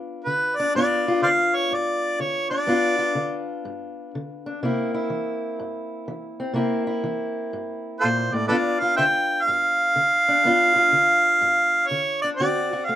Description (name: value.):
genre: acoustic country blues, solo or duo.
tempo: 124 BPM.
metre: 4/4.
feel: swing 65% on 8ths.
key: G mixolydian.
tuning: A4 = 440 Hz.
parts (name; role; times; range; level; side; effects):
fingerpicked steel-string acoustic guitar; accompaniment; 0.0-13.0 s; G2 to F#4; -25 LUFS; left 2 dB; slapback echo.
mellow harmonica; melody; 0.2-3.4, 8.0-13.0 s; F4 to G5; -19 LUFS; right 1 dB; none.
room: little or no reverb.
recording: recorded outdoors, with no room sound.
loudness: -19 LUFS.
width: side -12 dB against mid.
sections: 0.0-13.0 A section.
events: none.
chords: 0.0 G7; 4.6 C7; 8.5 G7; 12.4 D7.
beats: 0.26 | 0.74 1.23 1.71 2.20 | 2.68 3.17 3.66 4.14 | 4.63 5.11 5.60 6.08 | 6.57 7.06 7.54 8.03 | 8.51 9.00 9.48 9.97 | 10.45 10.94 11.42 11.91 | 12.39 12.88.